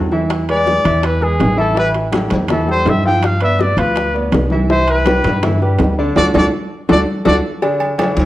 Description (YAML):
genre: latin, salsa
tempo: 164 BPM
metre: 4/4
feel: straight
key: unclear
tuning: A4 = 435 Hz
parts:
  - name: clear concert grand piano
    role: accompaniment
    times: 0.0-8.3 s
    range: D3 to F5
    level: -19 LUFS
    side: equal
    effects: none
  - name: upright bass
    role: bass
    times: 0.0-8.3 s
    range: A1 to G2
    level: -18 LUFS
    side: equal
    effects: none
  - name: congas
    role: percussion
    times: 0.1-8.3 s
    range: none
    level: -20 LUFS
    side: equal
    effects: none
  - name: bongos and cowbell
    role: percussion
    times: 0.3-8.3 s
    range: none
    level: -24 LUFS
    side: left 4 dB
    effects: none
  - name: timbales and agogo bells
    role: percussion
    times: 0.3-8.2 s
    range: none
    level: -23 LUFS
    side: right 4 dB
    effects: none
  - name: clear trumpet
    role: melody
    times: 0.5-7.4 s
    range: G#4 to G5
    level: -17 LUFS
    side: left 1 dB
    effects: none
room: moderate large studio reverb, RT60 1.2 s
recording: worn, warbling old tape, cassette tape, warbly pitch drift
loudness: -12 LUFS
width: side -15 dB against mid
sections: 0.0-7.6 A section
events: trumpet solo 0.0-7.6; drum fill 6.2-7.6; band accent 6.2-7.6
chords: 0.3 E7; 1.8 A5; 3.2 G6; 4.7 Cmaj9; 6.2 D; 7.6 N.C.